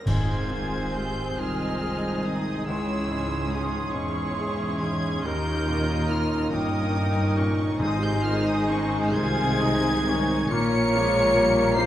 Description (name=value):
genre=cinematic, emotional film score for orchestra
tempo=43-49 BPM (dotted quarters)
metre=6/8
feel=rubato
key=Ab major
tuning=A4 = 440 Hz
part: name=warm studio violin section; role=melody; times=0.0-11.9 s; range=Db6 to Db7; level=-33 LUFS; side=left 2 dB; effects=none
part: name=dark clarinet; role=second line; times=0.0-11.9 s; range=Db4 to Db5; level=-31 LUFS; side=equal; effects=none
part: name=bright baby grand piano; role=accompaniment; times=0.0-11.9 s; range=Db2 to Ab4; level=-32 LUFS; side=left 1 dB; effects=none
part: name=rich studio viola section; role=accompaniment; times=0.0-11.9 s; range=Fb3 to F4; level=-33 LUFS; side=right 1 dB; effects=none
part: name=bright oboe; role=second line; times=0.1-11.9 s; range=Ab4 to Eb5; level=-36 LUFS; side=right 1 dB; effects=none
part: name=flute section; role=second line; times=0.1-11.9 s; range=G5 to C6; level=-33 LUFS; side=left 1 dB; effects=none
part: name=warm studio violin section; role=second line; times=0.1-11.9 s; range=Ab4 to Eb5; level=-35 LUFS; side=equal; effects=none
part: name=mellow French horn section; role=sustained chords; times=0.1-11.9 s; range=Ab3 to F4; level=-30 LUFS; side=left 2 dB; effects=none
part: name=warm studio cello section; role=bass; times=0.1-11.9 s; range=C2 to C3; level=-30 LUFS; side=right 1 dB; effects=none
part: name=warm studio double bass section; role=bass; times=0.1-11.9 s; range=Fb1 to Eb2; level=-32 LUFS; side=right 2 dB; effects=none
part: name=clash cymbals and concert bass drum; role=percussion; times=0.1-1.8 s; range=none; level=-34 LUFS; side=equal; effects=none
part: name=timpani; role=percussion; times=0.1-1.3, 7.8-9.1 s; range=Ab2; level=-30 LUFS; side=equal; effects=none
room=moderate scoring stage reverb, RT60 1.8 s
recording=vinyl crackle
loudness=-22 LUFS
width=side -12 dB against mid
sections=0.1-11.9 A section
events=band accent 0.1-1.0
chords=0.1 Ab; 2.7 Dbm; 5.3 Eb; 7.8 Ab; 10.5 Bbm7